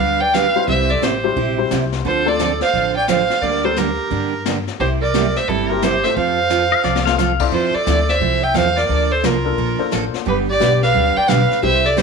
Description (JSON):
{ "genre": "country, western swing", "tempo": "175 BPM", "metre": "4/4", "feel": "swing 64% on 8ths", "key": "unclear", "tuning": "A4 = 440 Hz", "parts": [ { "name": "rich fiddle", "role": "melody", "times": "0.0-12.0 s", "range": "A4 to G5", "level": "-19 LUFS", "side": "equal", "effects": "none" }, { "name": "growling clarinet", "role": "second line", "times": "0.0-12.0 s", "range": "E4 to E5", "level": "-23 LUFS", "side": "right 8 dB", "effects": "none" }, { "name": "picked steel-string acoustic guitar", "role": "accompaniment", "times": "0.0-12.0 s", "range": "C3 to A4", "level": "-22 LUFS", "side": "right 10 dB", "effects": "none" }, { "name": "upright bass", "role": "bass", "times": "0.0-12.0 s", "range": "G1 to G2", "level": "-23 LUFS", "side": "left 3 dB", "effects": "none" }, { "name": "jazz brush drum kit", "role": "drums", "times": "0.3-12.0 s", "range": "brushed snare drum, crash cymbal, hi-hat, kick drum, snare drum", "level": "-26 LUFS", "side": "left 11 dB", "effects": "none" }, { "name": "warm upright piano", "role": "accompaniment", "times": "0.6-11.8 s", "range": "G3 to D5", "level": "-24 LUFS", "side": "left 14 dB", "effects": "none" }, { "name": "pedal steel guitar", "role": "second line", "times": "6.7-7.5 s", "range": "D5 to F5", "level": "-20 LUFS", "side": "left 13 dB", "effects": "none" } ], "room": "light reverb", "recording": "1960s-style stereo with parts hard left and right", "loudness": "-15 LUFS", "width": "side -5 dB against mid", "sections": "0.0-7.5 A section; 7.5-12.0 A section", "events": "drum fill 6.8-7.2", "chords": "0.0 G; 0.7 C; 2.1 Dm7; 3.4 Gm/D; 4.8 C7; 6.2 Fmaj7; 8.9 Bbmaj7; 10.3 G" }